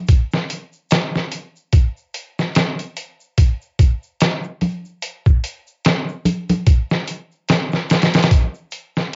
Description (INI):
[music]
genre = trip hop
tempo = 73 BPM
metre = 4/4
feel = swing 57% on 16ths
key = none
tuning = none
[part]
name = trip hop sampler-style drum kit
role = drums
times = 0.1-9.1 s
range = hi-hat, kick drum, snare drum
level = -17 LUFS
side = equal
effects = cassette tape
[part]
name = egg shaker and congas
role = percussion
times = 0.1-9.1 s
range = none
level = -23 LUFS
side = equal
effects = none
[sound]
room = light reverb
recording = home recording on cassette, nothing above 7.6 kHz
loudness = -19 LUFS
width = mono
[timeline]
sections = 0.0-9.2 A section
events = none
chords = none